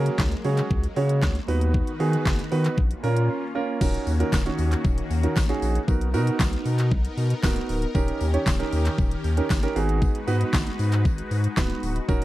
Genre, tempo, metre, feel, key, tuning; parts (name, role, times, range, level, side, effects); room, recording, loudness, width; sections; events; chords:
dance-pop; 116 BPM; 4/4; straight; Eb minor; A4 = 441 Hz
dark grand piano; accompaniment; 0.0-12.2 s; Bb3 to Db5; -27 LUFS; right 4 dB; sidechain pumping
supersaw pad; sustained chords; 0.0-12.2 s; D#3 to B4; -33 LUFS; left 3 dB; phaser, sidechain pumping
saturated sub bass; bass; 0.0-12.2 s; Db1 to D#3; -24 LUFS; equal; sidechain pumping
pop drum kit; drums; 0.1-12.2 s; crash cymbal, handclaps, hi-hat, kick drum, snare drum; -24 LUFS; equal; overdrive
tambourine; percussion; 3.8-12.2 s; -44 LUFS; left 24 dB
little or no reverb; dry, close 1970s-style studio recording; -21 LUFS; side -16 dB against mid
0.0-3.8 A section; 3.8-12.2 B section
break 3.3-3.8
0.0 Gbadd9/Db; 1.5 B/D#; 2.8 Bbm; 3.8 Ebm7; 5.9 Bmaj7; 7.9 Eb7; 9.8 Abm7